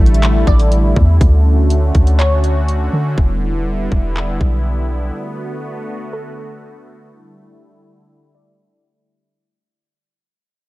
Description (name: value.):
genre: hip hop, atmospheric cloud-rap.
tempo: 122 BPM.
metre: 4/4.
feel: half-time.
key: D major.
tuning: A4 = 440 Hz.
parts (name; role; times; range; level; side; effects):
sweeping resonant pad; sustained chords; 0.0-9.1 s; D3 to F#4; -22 LUFS; equal; chorus, sidechain pumping, low-pass filter.
soft 808-style bass; bass; 0.0-5.1 s; E1 to D3; -14 LUFS; equal; none.
trap drum kit; drums; 0.1-4.5 s; handclaps, hi-hat, kick drum; -14 LUFS; equal; none.
glassy wavetable pluck; melody; 0.5-2.7, 6.1-9.0 s; A4 to D5; -25 LUFS; left 2 dB; chorus, low-pass filter, tape echo.
room: little or no reverb.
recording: dark, warm production.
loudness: -12 LUFS.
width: side -19 dB against mid.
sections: 0.0-1.2 A section; 1.2-9.1 B section.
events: fade-out 1.2-9.1; filter sweep 1.2-9.1.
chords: 0.0 A7sus4; 1.2 Dmaj7; 3.2 Em7; 5.1 Bm7; 7.1 A7sus4.